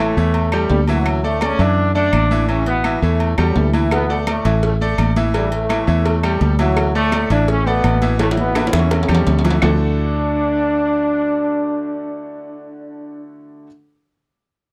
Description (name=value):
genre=latin, salsa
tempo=168 BPM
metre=4/4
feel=straight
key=D major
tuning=A4 = 440 Hz
part: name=mellow trombone section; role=melody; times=0.0-13.2 s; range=F#2 to E4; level=-23 LUFS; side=equal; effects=none
part: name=bright grand piano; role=accompaniment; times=0.0-13.7 s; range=D3 to E5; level=-26 LUFS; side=equal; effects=none
part: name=fingered electric bass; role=bass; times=0.0-13.7 s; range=A1 to F#2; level=-20 LUFS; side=equal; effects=none
part: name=congas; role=percussion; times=0.2-9.7 s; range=none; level=-27 LUFS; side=equal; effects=none
part: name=agogo bells and timbales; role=percussion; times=0.3-9.7 s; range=none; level=-29 LUFS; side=equal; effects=none
part: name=claves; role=percussion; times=0.5-9.7 s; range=none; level=-28 LUFS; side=equal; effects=none
part: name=cowbell and bongos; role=percussion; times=3.9-9.7 s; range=none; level=-28 LUFS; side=equal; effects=none
room=light reverb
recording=dry, close 1970s-style studio recording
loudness=-17 LUFS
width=mono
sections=0.0-9.6 A section; 9.6-12.5 B section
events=drum fill 8.2-9.6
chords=0.0 A5; 1.1 Dadd9; 2.5 A7; 3.9 Dsus2; 5.3 A5; 6.8 Dadd9; 8.2 A7; 9.6 Dadd9